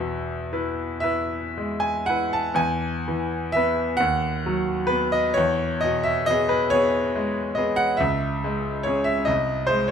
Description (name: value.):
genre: classical, romantic nocturne for solo piano.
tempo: 38-48 BPM (dotted quarters).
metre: 12/8.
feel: rubato.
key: E major.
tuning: A4 = 439 Hz.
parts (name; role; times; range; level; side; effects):
bright grand piano; solo; 0.0-9.9 s; B#1 to A5; -21 LUFS; equal; none.
room: light reverb.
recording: close, detailed microphones.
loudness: -21 LUFS.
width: side -7 dB against mid.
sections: 0.0-2.6 A section; 2.6-9.9 B section.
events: none.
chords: 0.0 E; 4.0 B/D#; 5.3 E; 8.0 C#m; 9.3 G#/B#.